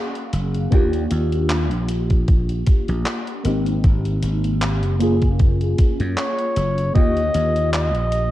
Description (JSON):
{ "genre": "vaporwave", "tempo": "77 BPM", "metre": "4/4", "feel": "swing 55% on 16ths", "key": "Eb major", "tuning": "A4 = 440 Hz", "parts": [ { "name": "warm flugelhorn", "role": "melody", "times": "0.0-0.3, 6.2-8.3 s", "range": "Gb4 to Eb5", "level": "-24 LUFS", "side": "left 1 dB", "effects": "vintage 12-bit sampler grit, tape echo" }, { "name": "mellow FM electric piano", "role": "accompaniment", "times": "0.0-8.3 s", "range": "D3 to F5", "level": "-24 LUFS", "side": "left 1 dB", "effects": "ensemble chorus, cassette tape, tape echo" }, { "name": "detuned 8-bit digital drum machine", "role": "drums", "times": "0.2-8.3 s", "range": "handclaps, hi-hat", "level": "-29 LUFS", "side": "equal", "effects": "none" }, { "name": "slap bass", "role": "bass", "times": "0.3-8.3 s", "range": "Gb1 to Gb2", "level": "-21 LUFS", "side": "equal", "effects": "none" }, { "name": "electronic kick drum", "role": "drums", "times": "0.7-7.1 s", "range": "none", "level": "-16 LUFS", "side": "equal", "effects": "none" } ], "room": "light reverb, digital ambience", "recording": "dark, warm production", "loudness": "-17 LUFS", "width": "side -14 dB against mid", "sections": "0.0-8.3 A section", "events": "none", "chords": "0.0 Gbmaj9; 0.7 Ebmaj7; 3.4 Abmaj9; 5.0 Gbmaj9; 7.0 Ebmaj7" }